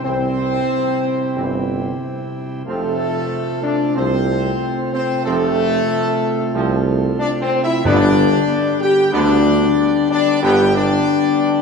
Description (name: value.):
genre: classical.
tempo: 93 BPM.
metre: 4/4.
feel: straight.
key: unclear.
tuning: A4 = 440 Hz.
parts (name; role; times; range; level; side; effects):
clear trumpet section; melody; 0.0-11.6 s; A4 to G5; -26 LUFS; right 2 dB; none.
dark French horn section; sustained chords; 0.0-11.6 s; A3 to G4; -18 LUFS; left 3 dB; none.
pipe organ, principal chorus; sustained chords; 0.0-11.6 s; C3 to G4; -23 LUFS; right 1 dB; none.
warm trombone section; sustained chords; 0.0-10.7 s; D3 to C4; -26 LUFS; right 2 dB; none.
warm tuba; bass; 0.0-11.0 s; F1 to D2; -21 LUFS; right 3 dB; none.
timpani; percussion; 7.8-8.8 s; G2; -23 LUFS; left 1 dB; none.
room: wet recital hall reverb, RT60 1.4 s.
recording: minimal, uncompressed stereo recording.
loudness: -15 LUFS.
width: side -5 dB against mid.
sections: 0.0-11.6 A section.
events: none.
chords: 0.0 C; 2.7 F; 7.8 G.